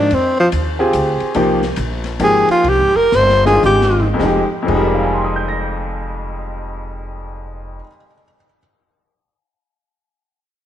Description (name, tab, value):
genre	modal jazz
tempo	101-145 BPM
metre	3/4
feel	swing 65% on 8ths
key	F dorian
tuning	A4 = 439 Hz
part	breathy tenor saxophone	melody	0.0-4.1 s	F3 to C5	-14 LUFS	equal	none
part	clear upright piano	accompaniment	0.0-8.6 s	F2 to Bb6	-18 LUFS	left 1 dB	none
part	upright bass	bass	0.0-7.8 s	F1 to F2	-21 LUFS	equal	none
part	open jazz drum kit	drums	0.1-4.8 s	crash cymbal, hi-hat, kick drum, ride cymbal, snare drum, toms	-29 LUFS	left 6 dB	none
room	moderate echo chamber reverb, RT60 2.1 s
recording	1960s-style stereo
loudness	-13 LUFS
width	side -11 dB against mid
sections	0.0-4.2 A section; 4.2-7.7 B section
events	tenor saxophone solo 0.0-4.2; slowing down 1.4-4.2; drum fill 3.1-4.2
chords	0.0 Fm9